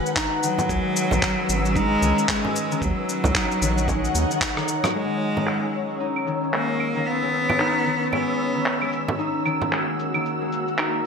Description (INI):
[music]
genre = organic downtempo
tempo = 113 BPM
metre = 4/4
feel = swing 60% on 16ths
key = unclear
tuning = A4 = 440 Hz
[part]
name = ethereal airy pad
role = sustained chords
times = 0.0-11.1 s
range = A#3 to E6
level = -27 LUFS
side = left 1 dB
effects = ensemble chorus, built-in reverb, sidechain pumping
[part]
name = concert harp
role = arpeggios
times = 0.0-11.1 s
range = D#3 to D#4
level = -27 LUFS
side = left 2 dB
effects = low-pass filter, ping-pong delay
[part]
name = electronic shaker, handclaps, rim click and claves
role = drums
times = 0.1-10.9 s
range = none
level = -26 LUFS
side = equal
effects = low-pass filter on perc, low-pass filter on snare, low-pass filter on room
[part]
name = electronic kick drum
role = drums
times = 0.2-4.5 s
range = none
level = -30 LUFS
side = equal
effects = none
[part]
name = clear cello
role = melody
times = 0.4-8.9 s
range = F#3 to B3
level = -25 LUFS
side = equal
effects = ping-pong delay
[part]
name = frame drum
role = percussion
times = 0.6-9.7 s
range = none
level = -29 LUFS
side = right 3 dB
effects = none
[part]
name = round analog bass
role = bass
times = 0.7-4.3 s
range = G#1 to D#2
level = -24 LUFS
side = equal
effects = sidechain pumping
[sound]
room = wet recital hall reverb, RT60 1.5 s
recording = none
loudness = -20 LUFS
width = side -6 dB against mid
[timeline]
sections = 0.0-4.9 A section; 4.9-11.1 B section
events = drum fill 4.4-4.9; filter sweep on ambient pad 4.9-11.1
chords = 0.0 F#sus4; 0.7 C#m7; 2.8 D#m7; 4.9 C#m7; 9.2 F#7